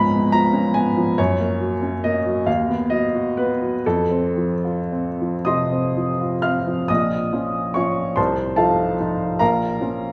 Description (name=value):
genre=classical, romantic character piece for solo piano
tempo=36-49 BPM (dotted quarters)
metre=6/8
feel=rubato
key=Bb minor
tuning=A4 = 440 Hz
part: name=warm upright piano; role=solo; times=0.0-10.1 s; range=Bb1 to F6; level=-21 LUFS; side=equal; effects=none
room=wet recital hall reverb, RT60 1.6 s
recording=heard from further back in the room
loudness=-21 LUFS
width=mono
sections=0.0-6.9 A section; 6.9-10.1 B section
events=none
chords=0.0 Db7; 1.2 Gb; 2.5 B/D#; 3.8 F; 6.9 Bbm; 8.2 F7/C; 9.4 Bbm